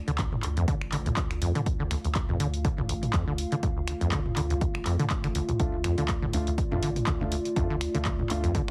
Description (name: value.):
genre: acid house.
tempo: 122 BPM.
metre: 4/4.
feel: swing 55% on 16ths.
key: D minor.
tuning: A4 = 439 Hz.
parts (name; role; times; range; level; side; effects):
dark analog pad; sustained chords; 0.0-8.7 s; A3 to F5; -38 LUFS; equal; lush chorus, sidechain pumping.
acid bass, saw; riff; 0.1-8.6 s; D2 to D3; -32 LUFS; equal; cassette tape, sidechain pumping, digital delay.
warm sub bass; bass; 0.1-8.7 s; A1 to D2; -36 LUFS; equal; sidechain pumping.
punchy analog drum machine; drums; 0.1-8.7 s; finger snaps, handclaps, hi-hat, toms; -36 LUFS; equal; none.
electronic kick drum; drums; 0.2-8.7 s; none; -33 LUFS; equal; none.
dark concert grand piano; stabs; 5.6-8.7 s; A3 to F4; -37 LUFS; equal; digital delay.
room: light reverb.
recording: heavily compressed radio sound.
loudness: -28 LUFS.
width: mono.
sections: 0.0-8.7 A section.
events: filter sweep on acid bass 0.0-8.7.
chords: 0.0 Dm.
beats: 0.19 0.68 1.17 | 1.66 2.15 2.65 3.14 | 3.63 4.12 4.61 5.11 | 5.60 6.09 6.58 7.07 | 7.56 8.05 8.55.